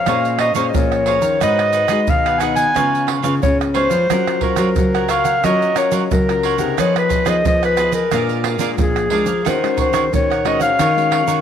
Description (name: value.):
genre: samba and choro.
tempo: 90 BPM.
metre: 4/4.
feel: straight.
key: Bb minor.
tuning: A4 = 440 Hz.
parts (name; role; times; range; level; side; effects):
mellow clarinet; melody; 0.0-11.4 s; Ab4 to Ab5; -18 LUFS; left 1 dB; none.
cavaquinho; accompaniment; 0.0-11.4 s; Eb4 to Bb5; -24 LUFS; right 9 dB; none.
nylon-string guitar; accompaniment; 0.0-11.4 s; Ab2 to C5; -24 LUFS; left 11 dB; none.
nylon-string guitar; bass; 0.1-11.4 s; Ab2 to Ab3; -22 LUFS; left 1 dB; none.
egg shaker, surdo, pandeiro and tamborim; percussion; 0.1-11.4 s; none; -22 LUFS; right 4 dB; none.
room: moderate plate reverb, RT60 3.4 s.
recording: 1960s-style stereo with parts hard left and right.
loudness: -14 LUFS.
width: side -8 dB against mid.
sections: 0.0-11.4 A section.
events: none.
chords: 0.0 Bbm9; 1.4 Abm7; 2.8 Db7; 4.1 Gbmaj7; 6.8 Fm7b5; 8.1 Bb7; 9.5 Ebm11.